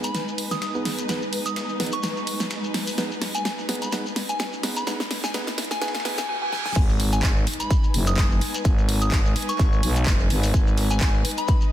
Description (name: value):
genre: bass house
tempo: 127 BPM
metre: 4/4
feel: swing 55% on 16ths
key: G# minor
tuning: A4 = 440 Hz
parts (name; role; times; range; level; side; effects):
- soft synth bell; melody; 0.0-11.6 s; G#5 to D#6; -31 LUFS; equal; chorus, ping-pong delay
- warm studio string section; sustained chords; 0.0-11.7 s; G#3 to B4; -34 LUFS; left 1 dB; sidechain pumping
- percussive organ stab; stabs; 0.0-6.2 s; B3 to B4; -33 LUFS; right 3 dB; chorus, sidechain pumping, ping-pong delay
- big-room dance drum kit; drums; 0.0-11.6 s; crash cymbal, handclaps, hi-hat, snare drum; -28 LUFS; equal; small room reverb
- shekere; percussion; 0.0-11.7 s; none; -35 LUFS; left 3 dB; none
- riser, reverse cymbal and impact; sound effects; 1.2-8.7 s; none; -36 LUFS; right 2 dB; none
- airy breathy pad; texture; 0.0-11.7 s; D#4 to G#5; -35 LUFS; left 1 dB; chorus, sidechain pumping
- dusty soul sampler-style drum kit; drums; 0.1-11.6 s; ride cymbal, snare drum; -39 LUFS; right 4 dB; none
- growling FM bass; bass; 6.8-11.2 s; F#1 to B1; -23 LUFS; equal; overdrive, sidechain pumping
- electronic kick drum; drums; 6.8-11.6 s; none; -20 LUFS; equal; small room reverb
room: light reverb, digital ambience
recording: dense, heavily limited modern master, high-pass filter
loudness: -21 LUFS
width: side -12 dB against mid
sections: 0.0-6.8 A section; 6.8-11.7 B section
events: build-up 0.0-6.8; drum fill 0.0-6.3, 6.5; filter sweep on synth stab 0.0-6.8; reverse cymbal 5.8-6.8; drop 6.8-11.7; impact 6.8-8.7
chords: 0.0 G#m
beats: 0.15 0.62 | 1.09 1.56 2.04 2.51 | 2.98 3.45 3.93 4.40 | 4.87 5.34 5.82 6.29 | 6.76 7.23 7.71 8.18 | 8.65 9.12 9.60 10.07 | 10.54 11.01 11.48